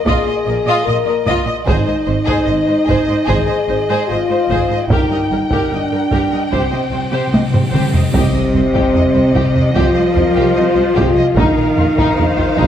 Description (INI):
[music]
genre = cinematic, epic orchestral film score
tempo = 74 BPM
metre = 4/4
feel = straight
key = C minor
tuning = A4 = 440 Hz
[part]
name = warm symphonic violin section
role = melody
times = 0.0-12.7 s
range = Eb5 to G5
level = -24 LUFS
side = left 3 dB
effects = none
[part]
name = mellow French horn section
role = sustained chords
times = 0.0-12.7 s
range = C4 to Bb4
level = -17 LUFS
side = left 3 dB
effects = none
[part]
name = rich symphonic cello section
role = bass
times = 0.0-12.7 s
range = G2 to F3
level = -22 LUFS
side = right 3 dB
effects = none
[part]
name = warm symphonic violin section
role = second line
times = 0.1-12.7 s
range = Eb4 to Eb5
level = -23 LUFS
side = left 1 dB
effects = none
[part]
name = warm symphonic viola section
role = accompaniment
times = 0.1-12.7 s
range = Ab4 to Eb5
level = -23 LUFS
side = right 2 dB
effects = none
[part]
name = rich symphonic double bass section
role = bass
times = 0.1-12.7 s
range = G1 to C2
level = -22 LUFS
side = right 3 dB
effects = none
[part]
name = taiko ensemble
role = drums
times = 0.1-12.7 s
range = none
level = -18 LUFS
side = equal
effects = none
[part]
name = timpani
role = percussion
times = 4.9-9.3 s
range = G2 to C3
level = -23 LUFS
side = left 1 dB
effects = none
[part]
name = cymbal swell and impact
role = sound effects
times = 6.7-11.4 s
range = none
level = -28 LUFS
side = equal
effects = none
[part]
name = mellow tuba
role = bass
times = 8.1-12.7 s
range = Bb1 to C2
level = -22 LUFS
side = right 5 dB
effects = none
[sound]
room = moderate scoring stage reverb, RT60 1.5 s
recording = none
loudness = -12 LUFS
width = side -10 dB against mid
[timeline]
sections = 0.0-8.1 A section; 8.1-12.7 A section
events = timpani fill 6.5-8.1; cymbal swell 6.7-8.1; drum fill 7.3-8.1; impact 8.1-11.4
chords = 0.0 Bbsus4; 1.7 Ab; 4.9 Eb/G; 6.5 C5; 8.1 Cm; 11.4 Bbsus4